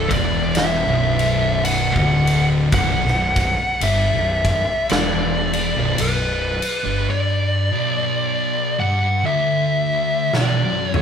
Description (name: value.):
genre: stoner and doom metal.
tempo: 55 BPM.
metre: 4/4.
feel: swing 59% on 8ths.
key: B minor.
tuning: A4 = 439 Hz.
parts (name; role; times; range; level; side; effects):
fuzz lead guitar; melody; 0.0-11.0 s; B4 to F#5; -21 LUFS; equal; distortion.
thick fuzz guitar; riff; 0.0-11.0 s; B1 to G2; -23 LUFS; left 7 dB; distortion.
thick fuzz guitar; riff; 0.0-11.0 s; B1 to G2; -24 LUFS; right 8 dB; distortion.
fuzz fingered electric bass; bass; 0.0-7.1 s; B0 to G1; -24 LUFS; equal; overdrive, tube saturation.
big rock drum kit; drums; 0.1-11.0 s; kick drum, ride cymbal, snare drum, toms; -24 LUFS; equal; none.
room: moderate large studio reverb, RT60 1.4 s.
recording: band playing live in one room.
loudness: -16 LUFS.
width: side -7 dB against mid.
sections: 0.0-11.0 A section.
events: drum fill 10.3-11.0.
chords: 0.0 Bm.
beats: 0.56 1.64 | 2.73 3.81 4.90 5.98 | 7.07 8.15 9.23 10.32.